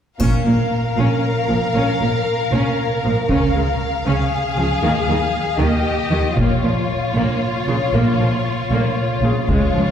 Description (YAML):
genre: cinematic, epic orchestral film score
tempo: 78 BPM (dotted quarters)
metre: 6/8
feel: straight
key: Bb dorian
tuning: A4 = 440 Hz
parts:
  - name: warm symphonic violin section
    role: melody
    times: 0.2-9.9 s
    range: Db5 to F5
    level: -24 LUFS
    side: left 4 dB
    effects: none
  - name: warm studio violin section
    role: second line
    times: 0.2-9.9 s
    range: F4 to Bb4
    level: -24 LUFS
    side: left 2 dB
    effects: none
  - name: rich studio viola section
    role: accompaniment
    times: 0.2-9.8 s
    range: Db3 to Db4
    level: -24 LUFS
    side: equal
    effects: none
  - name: rich symphonic cello section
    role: bass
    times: 0.2-9.8 s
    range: Db2 to Eb3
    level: -22 LUFS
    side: right 1 dB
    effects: none
  - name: warm symphonic double bass section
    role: bass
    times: 0.2-9.8 s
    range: Bb1 to Eb2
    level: -22 LUFS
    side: right 2 dB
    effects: none
  - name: taiko ensemble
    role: drums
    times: 0.2-9.9 s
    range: none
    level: -25 LUFS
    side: left 1 dB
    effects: none
  - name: triangle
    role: percussion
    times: 0.2-1.2 s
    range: none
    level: -37 LUFS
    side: left 2 dB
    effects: none
room: wet concert hall reverb, RT60 2.2 s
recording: heard from further back in the room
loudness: -16 LUFS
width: side -8 dB against mid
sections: 0.2-9.9 A section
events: build-up 0.2-9.9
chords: 0.2 Bbm; 3.3 Db; 4.8 Eb; 6.4 Bbm